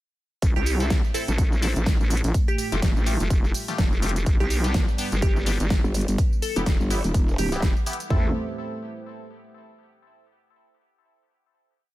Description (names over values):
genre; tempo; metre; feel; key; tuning
bass house; 125 BPM; 4/4; swing 58% on 16ths; A minor; A4 = 440 Hz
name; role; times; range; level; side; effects
dark analog pad; sustained chords; 0.4-8.3 s; G3 to E5; -36 LUFS; right 2 dB; chorus, sidechain pumping
vowel-sweep wobble bass; bass; 0.4-8.3 s; E1 to C2; -24 LUFS; equal; chorus, tube saturation, sidechain pumping
big-room dance drum kit; drums; 0.4-8.2 s; kick drum, toms; -22 LUFS; equal; none
big-room dance drum kit; drums; 0.4-8.1 s; hi-hat, snare drum, tambourine; -31 LUFS; right 1 dB; none
dusty soul sampler-style drum kit; drums; 0.4-8.0 s; hi-hat, snare drum; -42 LUFS; right 1 dB; none
glassy wavetable pluck; melody; 0.6-8.1 s; G4 to A4; -34 LUFS; right 2 dB; chorus, tape echo
band-passed chord stab; stabs; 0.8-8.3 s; A3 to A4; -34 LUFS; left 3 dB; phaser, sidechain pumping, tape echo
growl bass; bass; 5.8-7.6 s; E1 to G1; -24 LUFS; equal; chorus, sidechain pumping
room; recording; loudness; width
little or no reverb; none; -21 LUFS; side -16 dB against mid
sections
0.4-8.1 drop; 8.1-10.0 final chord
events
drop 0.4-8.1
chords
0.4 Am; 2.3 Fadd9; 4.3 G; 6.2 Em; 8.1 Am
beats
| 0.42 0.90 1.38 1.86 | 2.34 2.82 3.30 3.78 | 4.26 4.74 5.22 5.70 | 6.18 6.66 7.14 7.62 | 8.10